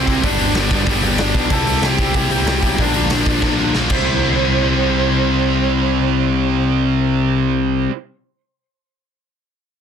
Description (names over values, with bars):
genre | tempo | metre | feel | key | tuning
punk rock | 187 BPM | 4/4 | straight | C major | A4 = 444 Hz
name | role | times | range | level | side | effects
lead guitar through a small cranked amp | melody | 0.0-7.4 s | C4 to A5 | -23 LUFS | right 2 dB | overdrive, ping-pong delay
biting overdriven guitar | riff | 0.0-7.9 s | G2 to F4 | -19 LUFS | left 9 dB | none
tight distorted guitar | riff | 0.0-7.9 s | G2 to Bb4 | -21 LUFS | right 17 dB | distortion
growling picked electric bass | bass | 0.0-7.9 s | G1 to C2 | -21 LUFS | right 1 dB | overdrive
raw garage drum kit | drums | 0.1-4.0 s | crash cymbal, hi-hat, kick drum, snare drum | -20 LUFS | equal | none
room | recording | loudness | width
little or no reverb | dense, heavily limited modern master | -14 LUFS | side -7 dB against mid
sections
0.0-4.1 A section; 4.1-6.6 B section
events
drum fill 3.4-4.1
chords
0.2 G; 1.5 C; 2.8 Bb; 3.9 C